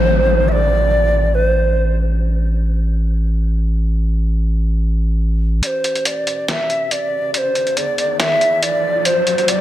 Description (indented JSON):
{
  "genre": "deep dubstep",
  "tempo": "140 BPM",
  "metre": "4/4",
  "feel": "half-time",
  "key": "A minor",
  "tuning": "A4 = 440 Hz",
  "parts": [
    { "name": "breathy bright low ney", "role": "melody", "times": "0.0-2.0, 5.6-9.6 s", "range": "C5 to E5", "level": "-17 LUFS", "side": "equal", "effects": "dub echo" },
    { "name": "saturated sub bass", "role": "bass", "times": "0.0-9.6 s", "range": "A1 to E2", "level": "-18 LUFS", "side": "equal", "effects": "high-pass filter" },
    { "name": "downlifter and riser", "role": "sound effects", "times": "0.0-2.2, 7.0-9.6 s", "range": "none", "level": "-24 LUFS", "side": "left 1 dB", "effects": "none" },
    { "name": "trip hop sampler-style drum kit", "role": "drums", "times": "5.6-9.6 s", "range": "hi-hat, snare drum", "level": "-20 LUFS", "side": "equal", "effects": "overdrive, high-pass filter on hats, studio reverb, high-pass filter on snare, high-pass filter on toms" }
  ],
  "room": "light reverb",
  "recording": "none",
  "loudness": "-15 LUFS",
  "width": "side -13 dB against mid",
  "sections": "0.0-5.6 A section; 5.6-9.6 B section",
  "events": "build-up 5.6-9.6; riser 7.0-9.6",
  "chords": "0.0 Am"
}